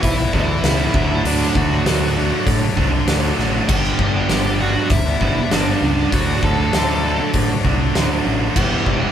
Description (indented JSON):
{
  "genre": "quiet-loud alternative rock",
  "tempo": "98 BPM",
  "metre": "4/4",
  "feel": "straight",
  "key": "unclear",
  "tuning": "A4 = 440 Hz",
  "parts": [
    { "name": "dark smooth lead guitar", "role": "melody", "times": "0.0-9.1 s", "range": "D4 to A5", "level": "-23 LUFS", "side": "right 1 dB", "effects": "overdrive" },
    { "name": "thick fuzz guitar", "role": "riff", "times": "0.0-9.1 s", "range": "G2 to E4", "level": "-22 LUFS", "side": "left 5 dB", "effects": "distortion" },
    { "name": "thick fuzz guitar", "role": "riff", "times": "0.0-9.1 s", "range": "G2 to E4", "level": "-22 LUFS", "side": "right 6 dB", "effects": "distortion" },
    { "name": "growling picked electric bass", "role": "bass", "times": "0.0-9.1 s", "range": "E1 to A2", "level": "-22 LUFS", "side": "equal", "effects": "overdrive" },
    { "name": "oversized low-tuned drum kit", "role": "drums", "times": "0.0-9.0 s", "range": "crash cymbal, hi-hat, kick drum, snare drum", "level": "-21 LUFS", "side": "equal", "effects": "none" }
  ],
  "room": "light reverb",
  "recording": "band playing live in one room",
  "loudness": "-15 LUFS",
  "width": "side -9 dB against mid",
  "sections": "0.0-9.1 A section",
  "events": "none",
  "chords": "0.0 Em; 0.9 D; 3.7 G; 6.1 D; 8.6 Em",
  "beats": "0.03 0.64 | 1.25 1.86 2.47 3.08 | 3.69 4.30 4.91 5.52 | 6.13 6.74 7.34 7.95 | 8.56"
}